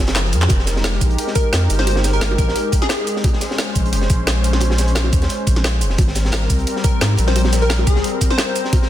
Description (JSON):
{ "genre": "liquid drum and bass", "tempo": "175 BPM", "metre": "4/4", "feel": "straight", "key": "F minor", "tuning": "A4 = 440 Hz", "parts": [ { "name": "warm analog pad", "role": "sustained chords", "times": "0.0-8.9 s", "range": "F3 to C5", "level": "-24 LUFS", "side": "left 2 dB", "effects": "chorus, sidechain pumping" }, { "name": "warm sub bass", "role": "bass", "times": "0.0-8.0 s", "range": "F1 to Ab2", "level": "-18 LUFS", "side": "equal", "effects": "none" }, { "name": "crunchy breakbeat drum kit", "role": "drums", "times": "0.1-8.9 s", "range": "hi-hat, snare drum", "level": "-26 LUFS", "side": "equal", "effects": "high-pass filter on hats, studio reverb, high-pass filter on snare, high-pass filter on room" }, { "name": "drum and bass drum kit", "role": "drums", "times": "0.1-8.8 s", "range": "handclaps, hi-hat, shaker, snare drum", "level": "-23 LUFS", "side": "equal", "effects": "overdrive, studio reverb" }, { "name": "electronic kick drum", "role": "drums", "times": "0.5-8.8 s", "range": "none", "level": "-18 LUFS", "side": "equal", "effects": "overdrive, studio reverb" }, { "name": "bongos", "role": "percussion", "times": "0.5-8.8 s", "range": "none", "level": "-30 LUFS", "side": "right 5 dB", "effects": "none" }, { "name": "plucky unison lead", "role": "melody", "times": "1.4-3.2, 6.8-8.6 s", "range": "Ab4 to C5", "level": "-23 LUFS", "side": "left 2 dB", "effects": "analog chorus, vintage 12-bit sampler grit, ping-pong delay" } ], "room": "small room ambience", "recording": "dense, heavily limited modern master", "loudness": "-15 LUFS", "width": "side -12 dB against mid", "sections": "0.5-8.9 A section", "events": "drum fill 0.2-0.5; band accent 0.4; drop 0.5-8.9", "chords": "0.5 Fm11; 3.2 Bbm9; 6.0 Abmaj9", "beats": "0.16 | 0.50 0.84 1.18 1.53 | 1.87 2.21 2.56 2.90 | 3.24 3.58 3.93 4.27 | 4.61 4.96 5.30 5.64 | 5.98 6.33 6.67 7.01 | 7.36 7.70 8.04 8.38 | 8.73" }